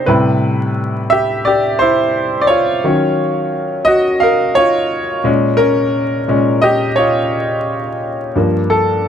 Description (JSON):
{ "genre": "R&B", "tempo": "87 BPM", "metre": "4/4", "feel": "swing 53% on 16ths", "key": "unclear", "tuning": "A4 = 440 Hz", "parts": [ { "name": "bright grand piano", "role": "solo", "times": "0.0-9.1 s", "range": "G2 to F5", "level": "-12 LUFS", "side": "equal", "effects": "none" } ], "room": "light reverb", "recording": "dry, close 1970s-style studio recording, vinyl crackle", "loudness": "-12 LUFS", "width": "side -8 dB against mid", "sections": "0.0-8.3 A section", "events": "grand piano solo 0.0-8.3", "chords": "0.1 Am9; 2.8 Ebm9; 5.2 Bbm7; 8.3 Gm9", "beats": "| 0.06 0.75 1.44 2.13 | 2.82 3.51 4.20 4.89 | 5.58 6.27 6.96 7.65 | 8.34 9.03" }